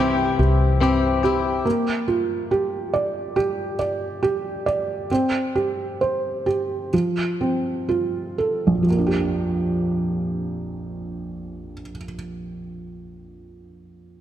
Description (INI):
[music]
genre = pop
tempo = 60-71 BPM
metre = 4/4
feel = straight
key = Bb lydian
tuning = A4 = 440 Hz
[part]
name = felt-muted upright piano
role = accompaniment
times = 0.0-14.2 s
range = Bb1 to D5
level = -22 LUFS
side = right 2 dB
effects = none
[part]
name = direct-recorded clean electric guitar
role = arpeggios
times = 0.0-1.7 s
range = C3 to G4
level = -23 LUFS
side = left 7 dB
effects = spring reverb
[part]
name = vintage muted fingered electric bass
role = bass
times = 0.0-1.6 s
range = C2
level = -21 LUFS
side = left 1 dB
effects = none
[sound]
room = moderate lush hall reverb, RT60 2.6 s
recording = none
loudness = -20 LUFS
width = side -11 dB against mid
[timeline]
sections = 0.0-8.9 A section; 8.9-12.8 B section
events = slowing down 1.7-8.9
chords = 0.0 C; 1.7 Bb6; 5.1 C5; 6.9 F; 8.9 Bb6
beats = 0.81 | 1.66 2.51 3.36 4.22 | 5.10 6.00 6.93 7.89 | 8.88 9.87 10.86 11.84